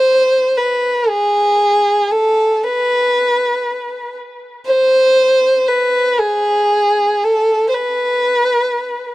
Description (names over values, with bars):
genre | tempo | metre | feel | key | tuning
arabic | free time | none | none | unclear | A4 = 439 Hz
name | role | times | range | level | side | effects
dark violin | solo | 0.0-9.1 s | G#4 to C5 | -13 LUFS | equal | none
room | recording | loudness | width
little or no reverb | dry, close 1970s-style studio recording | -12 LUFS | side -17 dB against mid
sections
0.0-9.1 A section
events
none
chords
none